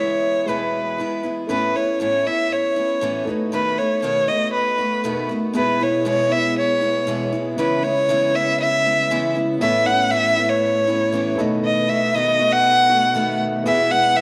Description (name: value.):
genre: acoustic pop.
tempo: 118 BPM.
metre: 4/4.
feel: straight.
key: A major.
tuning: A4 = 440 Hz.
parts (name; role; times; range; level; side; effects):
warm violin; melody; 0.0-14.2 s; B4 to F#5; -21 LUFS; equal; none.
clear upright piano; accompaniment; 0.0-14.2 s; B2 to E5; -32 LUFS; equal; none.
picked steel-string acoustic guitar; accompaniment; 0.0-14.2 s; E2 to F#4; -26 LUFS; equal; none.
mellow tonewheel organ; sustained chords; 5.6-14.2 s; A2 to B4; -30 LUFS; equal; overdrive, fast rotary speaker.
room: wet echo chamber reverb, RT60 2.1 s.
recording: none.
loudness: -19 LUFS.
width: mono.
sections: 0.0-1.5 A section; 1.5-9.6 B section; 9.6-14.2 C section.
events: none.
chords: 0.5 E; 1.5 Aadd9; 3.3 B7; 5.6 E/B; 7.6 C#m7; 9.6 Aadd9; 11.4 B7; 13.7 E/B.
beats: 0.48 0.99 | 1.50 2.00 2.51 3.02 | 3.53 4.03 4.54 5.05 | 5.55 6.06 6.57 7.08 | 7.58 8.09 8.60 9.10 | 9.61 10.12 10.62 11.13 | 11.64 12.14 12.65 13.16 | 13.66 14.17.